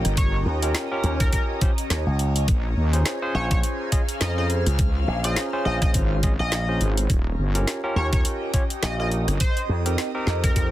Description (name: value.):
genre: glitch hop.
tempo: 104 BPM.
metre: 4/4.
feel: swing 57% on 16ths.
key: Bb dorian.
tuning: A4 = 436 Hz.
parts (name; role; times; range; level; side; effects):
barky tine electric piano; stabs; 0.0-10.7 s; C4 to Eb5; -30 LUFS; equal; overdrive, vintage 12-bit sampler grit, sidechain pumping, dub echo.
slap bass with an envelope filter; bass; 0.0-10.7 s; Bb1 to F2; -24 LUFS; equal; tube saturation.
drum and bass drum kit; drums; 0.0-10.7 s; hi-hat, rim click, snare drum; -28 LUFS; equal; overdrive.
airy breathy pad; texture; 0.0-10.7 s; C4 to Bb5; -32 LUFS; right 1 dB; chorus, phaser, sidechain pumping.
wobble bass; bass; 0.1-9.4 s; Eb1 to Eb2; -22 LUFS; equal; chorus.
sync lead; melody; 0.2-10.7 s; Bb4 to Eb5; -31 LUFS; left 1 dB; chorus, dub echo.
electronic kick drum; drums; 0.2-10.7 s; none; -22 LUFS; equal; overdrive.
room: little or no reverb.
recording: dense, heavily limited modern master.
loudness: -20 LUFS.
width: side -14 dB against mid.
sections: 0.0-10.7 A section.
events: none.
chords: 0.0 Eb7; 2.5 Bbm7; 7.1 Eb7; 9.4 F7sus4.